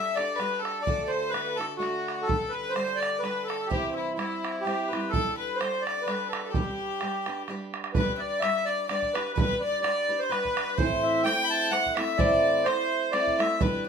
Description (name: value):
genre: celtic folk, Celtic waltz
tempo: 127 BPM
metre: 3/4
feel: swing 54% on 8ths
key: G major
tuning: A4 = 439 Hz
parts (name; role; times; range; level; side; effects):
- accordion; melody; 0.0-13.9 s; E4 to B5; -28 LUFS; right 1 dB; none
- rich fiddle; second line; 0.0-13.9 s; E4 to G5; -31 LUFS; left 7 dB; none
- picked steel-string acoustic guitar; accompaniment; 0.0-13.9 s; A2 to C5; -32 LUFS; right 2 dB; none
- bodhran; percussion; 0.2-13.8 s; none; -31 LUFS; right 3 dB; none
room: moderate studio reverb, RT60 0.6 s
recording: minimal, uncompressed stereo recording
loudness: -25 LUFS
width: side -6 dB against mid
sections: 0.0-8.0 A section; 8.0-13.9 B section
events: none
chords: 0.0 Gsus2; 0.9 D; 2.3 Gsus2; 3.7 C; 5.1 Gsus2; 6.5 G; 10.8 Am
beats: 0.39 | 0.86 1.34 1.81 | 2.28 2.75 3.23 | 3.70 4.17 4.65 | 5.12 5.59 6.07 | 6.54 7.01 7.48 | 7.96 8.43 8.90 | 9.37 9.84 10.31 | 10.79 11.26 11.73 | 12.20 12.67 13.14 | 13.61